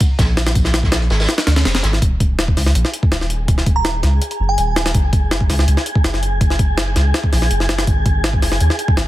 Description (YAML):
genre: drum and bass, jungle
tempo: 164 BPM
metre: 4/4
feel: straight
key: unclear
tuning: A4 = 439 Hz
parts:
  - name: jungle sampler-style drum kit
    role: drums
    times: 0.0-9.1 s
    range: hi-hat, kick drum, snare drum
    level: -16 LUFS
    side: equal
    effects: none
  - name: vintage drum kit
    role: drums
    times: 0.0-1.9 s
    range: hi-hat, snare drum, tambourine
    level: -25 LUFS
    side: right 1 dB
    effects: high-pass filter on hats, high-pass filter on snare, high-pass filter on perc, high-pass filter on room
  - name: soft dub sub bass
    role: bass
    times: 0.2-9.1 s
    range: Eb1 to Eb2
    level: -17 LUFS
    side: equal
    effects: none
  - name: wind-like tuned noise texture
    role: texture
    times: 2.7-9.1 s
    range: Ab4 to Ab5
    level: -26 LUFS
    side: equal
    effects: built-in reverb
  - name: glassy synth bell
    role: melody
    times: 3.8-4.9 s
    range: Ab5 to Bb5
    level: -24 LUFS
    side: right 3 dB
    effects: chorus, vintage 12-bit sampler grit, dub echo
room: little or no reverb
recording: dense, heavily limited modern master, vinyl crackle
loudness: -14 LUFS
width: side -15 dB against mid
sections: 0.0-2.0 A section; 2.0-9.1 A section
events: drop 0.0-2.0, 2.0-9.1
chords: 0.0 Bb7(no3); 2.0 N.C.; 4.9 Gbsus2; 7.9 Ab7(no3)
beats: 0.19 | 0.56 0.92 1.29 1.65 | 2.02 2.38 2.75 3.12 | 3.48 3.85 4.21 4.58 | 4.95 5.31 5.68 6.04 | 6.41 6.78 7.14 7.51 | 7.87 8.24 8.60 8.97